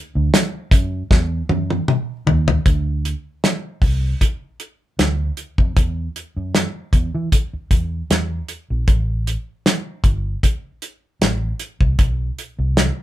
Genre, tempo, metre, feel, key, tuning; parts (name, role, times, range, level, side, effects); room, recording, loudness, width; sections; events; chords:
lush 1970s-style soul; 77 BPM; 4/4; swing 54% on 16ths; A dorian; A4 = 440 Hz
vintage muted fingered electric bass; bass; 0.2-12.9 s; G1 to E3; -21 LUFS; right 1 dB
damped 70s drum kit; drums; 0.3-13.0 s; hi-hat, kick drum, snare drum, toms; -16 LUFS; equal
moderate small room reverb, RT60 0.5 s; band playing live in one room; -17 LUFS; side -14 dB against mid
0.0-2.7 A section; 2.7-13.0 B section
drum fill 1.1-2.7